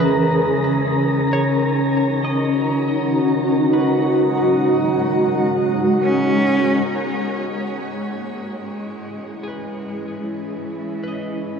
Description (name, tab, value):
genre	ambient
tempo	71 BPM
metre	4/4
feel	straight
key	C# dorian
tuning	A4 = 439 Hz
part	granular cloud pad	sustained chords	0.0-11.6 s	G#3 to D#6	-19 LUFS	equal	built-in reverb
part	twelve-string electric guitar	arpeggios	0.0-11.6 s	G#4 to E5	-31 LUFS	right 1 dB	wide subtle chorus, ping-pong delay
part	analog drone	drone	0.0-7.0 s	C#3	-27 LUFS	right 1 dB	chorus
part	wind-like tuned noise texture	texture	0.0-6.9 s	A#4 to A#5	-27 LUFS	left 1 dB	built-in reverb
part	clear cello	melody	6.0-11.6 s	E3 to C#4	-26 LUFS	right 1 dB	ping-pong delay
room	wet shimmer reverb, RT60 6.8 s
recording	worn, warbling old tape, cassette tape, warbly pitch drift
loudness	-17 LUFS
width	side -6 dB against mid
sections	0.0-6.9 A section; 6.9-11.6 B section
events	fade-out on clean electric guitar 0.0-6.9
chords	0.0 C#m9; 3.5 G#m7; 6.9 C#m7